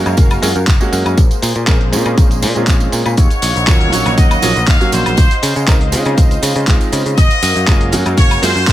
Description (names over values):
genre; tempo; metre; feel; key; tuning
nu-disco, nu disco; 120 BPM; 4/4; straight; unclear; A4 = 440 Hz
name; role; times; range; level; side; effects
clear baby grand piano; accompaniment; 0.0-8.5 s; Gb3 to Bb4; -20 LUFS; right 2 dB; sidechain pumping, dub echo
lush unison pad; sustained chords; 0.0-8.7 s; Bb3 to Gb5; -23 LUFS; equal; chorus, sidechain pumping
picked electric bass; bass; 0.0-8.7 s; Gb1 to Db3; -17 LUFS; equal; sidechain pumping
dusty soul sampler-style drum kit; drums; 0.1-8.7 s; handclaps, hi-hat, shaker, woodblock; -20 LUFS; left 1 dB; none
tambourine; percussion; 0.1-8.7 s; none; -27 LUFS; right 10 dB; none
electronic kick drum; drums; 0.2-8.7 s; none; -11 LUFS; equal; none
muted trumpet section; melody; 3.2-8.7 s; C5 to F5; -18 LUFS; left 1 dB; tape echo
room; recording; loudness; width
little or no reverb; none; -10 LUFS; side -13 dB against mid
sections
0.0-8.7 A section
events
none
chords
0.0 Gbmaj7; 1.2 Bbm9; 3.2 Ebm9; 5.2 Dbmaj9; 7.2 Gbmaj7